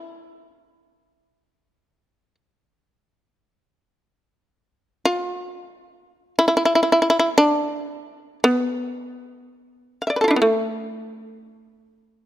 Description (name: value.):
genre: japanese traditional, Japanese chamber music.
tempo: free time.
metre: none.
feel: none.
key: E in sen.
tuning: A4 = 442 Hz.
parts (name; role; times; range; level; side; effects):
shamisen; solo; 0.0-12.3 s; A3 to F5; -18 LUFS; equal; none.
room: light reverb.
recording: close, detailed microphones.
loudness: -18 LUFS.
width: side -13 dB against mid.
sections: 0.0-12.3 A section.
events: none.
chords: none.